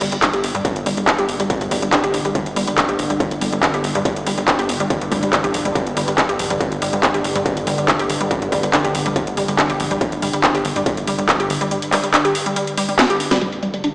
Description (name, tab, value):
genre	driving peak-time techno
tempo	141 BPM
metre	4/4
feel	straight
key	G minor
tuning	A4 = 445 Hz
part	resonant blip pluck	riff	0.0-13.9 s	G3 to G4	-21 LUFS	equal	chorus, overdrive, sidechain pumping, digital delay
part	tight sequencer bass	bass	0.0-13.9 s	G1 to G2	-26 LUFS	equal	sidechain pumping
part	swarming drone	drone	0.4-13.5 s	G2 to D3	-26 LUFS	equal	built-in reverb, sidechain pumping
part	techno drum kit	drums	0.0-13.9 s	handclaps, hi-hat, snare drum	-19 LUFS	equal	low-pass filter on hats, studio reverb, low-pass filter on snare, low-pass filter on cymbals
part	electronic kick drum	drums	0.2-11.4 s	none	-22 LUFS	equal	distortion, studio reverb
part	impact	sound effects	13.4-13.9 s	none	-37 LUFS	equal	none
part	granular cloud pad	texture	13.4-13.9 s	none	barely audible	none	none
room	moderate lush hall reverb, RT60 1.6 s, digital ambience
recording	played on a big sound system in a bare room, large studio reverb, small speaker sound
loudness	-16 LUFS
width	side -25 dB against mid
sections	0.0-13.4 A section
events	drum fill 13.0-13.4; impact 13.4-13.9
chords	0.0 G5